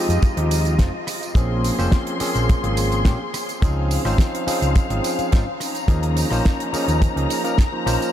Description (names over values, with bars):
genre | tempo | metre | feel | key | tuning
nu-disco, nu disco | 106 BPM | 4/4 | straight | unclear | A4 = 441 Hz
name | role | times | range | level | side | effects
barky tine electric piano | accompaniment | 0.0-8.1 s | F3 to C5 | -24 LUFS | right 1 dB | sidechain pumping, diffuse ambient delay
dark symphonic string section | sustained chords | 0.0-8.1 s | Bb3 to C6 | -26 LUFS | left 3 dB | sidechain pumping
hollow-body short-scale fingered electric bass | bass | 0.1-8.0 s | F1 to Bb2 | -22 LUFS | equal | tube saturation, sidechain pumping
damped 70s drum kit | drums | 0.1-8.1 s | hi-hat, rim click, snare drum, tambourine | -28 LUFS | right 2 dB | none
kick drum | drums | 0.2-7.7 s | none | -17 LUFS | equal | none
room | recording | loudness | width
light reverb, small room ambience | none | -18 LUFS | side -11 dB against mid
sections
0.0-8.1 A section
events
none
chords
0.0 Fm7; 1.4 Bbm9; 3.6 Dbmaj7; 5.6 Eb7sus4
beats
0.23 0.79 | 1.36 1.92 2.49 3.06 | 3.62 4.19 4.75 5.32 | 5.89 6.45 7.02 7.58